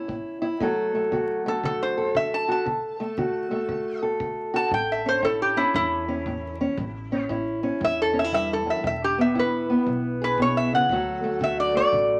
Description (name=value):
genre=acoustic country blues, solo or duo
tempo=117 BPM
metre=4/4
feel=swing 64% on 8ths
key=A major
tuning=A4 = 440 Hz
part: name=fingerpicked steel-string acoustic guitar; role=accompaniment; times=0.0-12.2 s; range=E2 to A4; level=-28 LUFS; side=equal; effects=none
part: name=kick drum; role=drums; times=0.1-12.1 s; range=none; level=-45 LUFS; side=equal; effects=none
part: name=lap resonator guitar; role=melody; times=1.5-12.2 s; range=E4 to A5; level=-26 LUFS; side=equal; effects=none
part: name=upright bass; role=bass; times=4.7-12.2 s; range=E1 to E2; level=-39 LUFS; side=equal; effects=none
room=moderate club reverb, RT60 0.7 s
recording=vinyl crackle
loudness=-25 LUFS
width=mono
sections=0.0-12.2 A section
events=resonator guitar played with a steel bar solo 0.0-12.2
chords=0.0 A; 0.6 D; 4.7 A; 8.8 E; 10.9 D